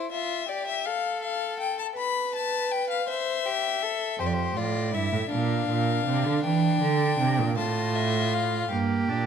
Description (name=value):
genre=classical, baroque-style fugue for string quartet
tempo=54 BPM (dotted quarters)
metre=6/8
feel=straight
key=F major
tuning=A4 = 440 Hz
part: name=clear violin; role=melody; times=0.0-8.7 s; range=C5 to B5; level=-29 LUFS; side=left 8 dB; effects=none
part: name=clear violin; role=second line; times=0.0-9.3 s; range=D4 to C5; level=-30 LUFS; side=left 1 dB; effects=none
part: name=warm cello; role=bass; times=4.2-9.3 s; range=F2 to E3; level=-25 LUFS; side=right 5 dB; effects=none
part: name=clear viola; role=accompaniment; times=8.7-9.3 s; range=Bb3 to D4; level=-27 LUFS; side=right 5 dB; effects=none
room=moderate concert hall reverb, RT60 1.7 s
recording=none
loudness=-24 LUFS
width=side -7 dB against mid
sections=0.0-8.7 A section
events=none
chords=0.0 C/E (rootless); 0.9 F/A; 2.0 N.C.; 3.1 C; 4.2 F; 5.3 Bbadd9; 6.4 C7; 7.6 F/A; 8.7 Gm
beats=0.86 | 1.97 3.09 | 4.20 5.32 | 6.45 7.58 | 8.72